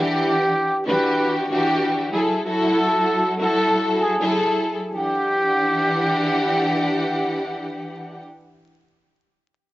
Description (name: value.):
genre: hip hop.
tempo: 96 BPM.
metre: 4/4.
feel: swing 62% on 16ths.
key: E minor.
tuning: A4 = 440 Hz.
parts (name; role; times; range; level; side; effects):
warm studio string section; accompaniment; 0.0-8.2 s; E3 to F#5; -20 LUFS; equal; cassette tape, high-pass filter, low-pass filter, plate reverb.
trumpet with plunger mute; melody; 0.3-6.8 s; G4 to B4; -22 LUFS; equal; high-pass filter, low-pass filter, cassette tape, plate reverb.
room: light reverb.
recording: home recording on cassette, vinyl crackle, nothing above 7.7 kHz.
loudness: -18 LUFS.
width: side -16 dB against mid.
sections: 0.0-4.9 A section; 4.9-7.4 B section.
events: none.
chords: 0.0 Em9; 2.1 F#m9; 4.9 Em9.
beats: 0.57 1.20 1.82 | 2.44 3.07 3.69 4.32 | 4.95 5.57 6.20 6.82.